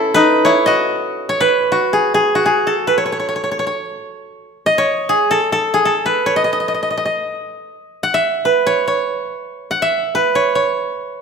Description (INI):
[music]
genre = calypso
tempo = 143 BPM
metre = 4/4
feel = straight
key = unclear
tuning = A4 = 441 Hz
[part]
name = koto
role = solo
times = 0.0-11.2 s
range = C#4 to F#5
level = -14 LUFS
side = equal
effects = none
[sound]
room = moderate recital hall reverb, RT60 1.5 s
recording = none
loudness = -14 LUFS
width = side -5 dB against mid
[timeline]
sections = 0.0-1.5 A section; 1.5-11.2 B section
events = none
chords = 0.0 Aadd9; 0.7 N.C.